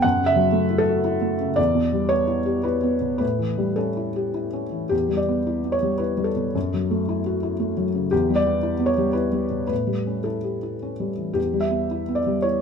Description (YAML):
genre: neoclassical minimalist piano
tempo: 104-119 BPM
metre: 3/4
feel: rubato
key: E dorian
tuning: A4 = 440 Hz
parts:
  - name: felt-muted upright piano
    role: solo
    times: 0.0-12.6 s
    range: E2 to F#5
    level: -20 LUFS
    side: equal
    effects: none
room: moderate stone room reverb, RT60 1.3 s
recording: minimal, uncompressed stereo recording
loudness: -20 LUFS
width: side -6 dB against mid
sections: 0.0-4.9 A section; 4.9-12.6 B section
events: none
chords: 0.0 F#m7; 1.6 Em7; 3.2 A7; 4.9 Em7; 6.6 F#m7; 8.1 Em7; 9.7 A7; 11.4 Em